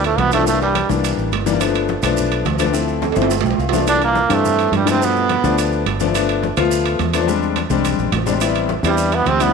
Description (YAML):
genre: Afro-Cuban jazz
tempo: 212 BPM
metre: 4/4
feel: straight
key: G mixolydian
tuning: A4 = 440 Hz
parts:
  - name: trombone with straight mute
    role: melody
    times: 0.0-0.9, 3.9-5.6, 8.9-9.5 s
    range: G3 to D4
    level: -18 LUFS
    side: right 4 dB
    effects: none
  - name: breathy baritone saxophone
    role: second line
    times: 0.0-0.9, 3.9-5.6, 8.9-9.5 s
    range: G2 to D3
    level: -26 LUFS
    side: right 11 dB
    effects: none
  - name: warm grand piano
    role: accompaniment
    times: 0.0-9.5 s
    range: E3 to G5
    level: -19 LUFS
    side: left 8 dB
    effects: none
  - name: fingered electric bass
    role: bass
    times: 0.0-9.5 s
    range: G1 to G2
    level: -22 LUFS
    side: right 2 dB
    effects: none
  - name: congas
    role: percussion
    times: 0.0-9.5 s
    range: none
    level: -28 LUFS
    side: left 9 dB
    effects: none
  - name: maracas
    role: percussion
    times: 0.0-9.5 s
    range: none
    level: -31 LUFS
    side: right 14 dB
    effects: none
  - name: timbales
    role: percussion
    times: 0.0-9.5 s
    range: none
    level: -24 LUFS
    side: right 14 dB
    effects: none
room: moderate echo chamber reverb, RT60 2.0 s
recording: 1960s-style stereo with parts hard left and right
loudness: -15 LUFS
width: side -5 dB against mid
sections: 0.0-9.5 A section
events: drum fill 3.0-3.9, 7.7-8.4; grand piano fill 3.3-3.9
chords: 0.5 C9; 1.6 G9; 2.7 Dm7; 3.3 G9; 3.9 C9; 5.0 G9; 7.3 E7alt; 8.4 Am7